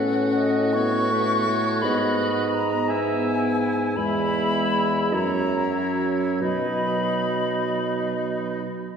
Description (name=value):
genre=classical, slow romantic movement for wind quintet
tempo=43-57 BPM (dotted quarters)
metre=6/8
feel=rubato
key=B major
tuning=A4 = 439 Hz
part: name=silver concert flute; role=melody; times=0.0-8.5 s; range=F#5 to C#6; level=-28 LUFS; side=left 3 dB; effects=none
part: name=clear oboe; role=second line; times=0.0-8.6 s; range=D#4 to F#4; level=-31 LUFS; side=equal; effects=none
part: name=clear clarinet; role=accompaniment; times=0.0-8.3 s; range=B4 to E5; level=-30 LUFS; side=right 2 dB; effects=none
part: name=warm French horn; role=accompaniment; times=0.0-8.6 s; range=F#3 to C#4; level=-27 LUFS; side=left 1 dB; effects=none
part: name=mellow bassoon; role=bass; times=0.0-8.7 s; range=E2 to B2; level=-26 LUFS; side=right 2 dB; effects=none
room=wet concert hall reverb, RT60 2.1 s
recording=heard from further back in the room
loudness=-21 LUFS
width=side -7 dB against mid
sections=0.0-9.0 A section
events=none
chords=0.0 B5/A; 1.8 E/G#; 4.0 E; 5.1 F#7; 6.4 B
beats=0.74 | 1.83 2.89 | 3.96 5.12 | 6.42 7.74